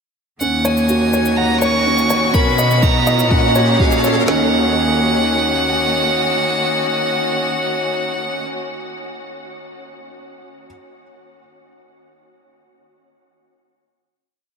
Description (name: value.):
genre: piano and strings electronica.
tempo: 124 BPM.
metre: 4/4.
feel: straight.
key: Eb minor.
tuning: A4 = 439 Hz.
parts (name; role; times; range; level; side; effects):
bright violin; melody; 0.4-8.4 s; F5 to Db6; -19 LUFS; right 2 dB; tape echo.
rich string quartet; sustained chords; 0.4-8.6 s; Eb3 to Gb4; -23 LUFS; left 2 dB; sidechain pumping.
warm upright piano; riff; 0.4-10.7 s; Db4 to A#5; -21 LUFS; right 1 dB; tape echo.
warm symphonic cello section; bass; 0.4-5.7 s; Eb2 to B2; -19 LUFS; equal; sidechain pumping.
shaker; drums; 0.4-4.1 s; none; -28 LUFS; right 1 dB; high-pass filter on perc.
riser; sound effects; 1.5-4.3 s; none; -27 LUFS; right 2 dB; none.
deep house drum kit; drums; 2.3-4.4 s; kick drum, snare drum; -17 LUFS; left 1 dB; none.
room: wet huge ambient reverb, RT60 8.9 s.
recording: dreamy mix soaked in reverb.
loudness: -14 LUFS.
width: side -6 dB against mid.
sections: 0.4-4.3 build; 4.3-8.2 final chord.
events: build-up 0.4-4.3; riser 1.5-4.3.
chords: 0.4 Ebm7; 2.3 Bmaj7; 3.3 Gb/Bb; 4.3 Ebm7.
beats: | 0.41 0.89 1.38 1.86 | 2.34 2.83 3.31 3.80 | 4.28 4.76 5.25 5.73 | 6.21 6.70 7.18 7.67.